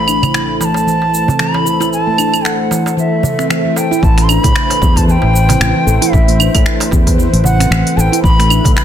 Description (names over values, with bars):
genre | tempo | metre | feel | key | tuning
organic downtempo | 114 BPM | 4/4 | swing 57% on 16ths | A dorian | A4 = 440 Hz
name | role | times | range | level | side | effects
bright bansuri | melody | 0.0-8.8 s | E5 to C6 | -17 LUFS | equal | tape echo
warm analog pad | sustained chords | 0.0-8.8 s | A3 to E5 | -21 LUFS | right 1 dB | chorus, sidechain pumping
handpan | arpeggios | 0.0-8.6 s | E3 to A4 | -17 LUFS | equal | tape echo
sustaining fretless electric bass | bass | 0.0-8.7 s | A1 to A2 | -14 LUFS | equal | none
afro-pop drum kit | drums | 0.1-8.8 s | cabasa, claves, finger snaps, hi-hat | -18 LUFS | right 2 dB | soft clipping on snare
darbuka | percussion | 0.2-8.7 s | none | -20 LUFS | right 2 dB | none
swell | sound effects | 3.2-4.0 s | none | -23 LUFS | equal | none
electronic kick drum | drums | 4.0-8.7 s | none | -12 LUFS | equal | none
room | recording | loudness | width
light reverb, digital ambience | dense, heavily limited modern master | -10 LUFS | side -10 dB against mid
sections
0.0-4.0 A section; 4.0-8.8 B section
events
filter sweep on handpan 0.0-4.0; filter sweep on analog synth pad 0.0-4.0; swell 3.2-4.0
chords
0.0 Am; 4.0 Am7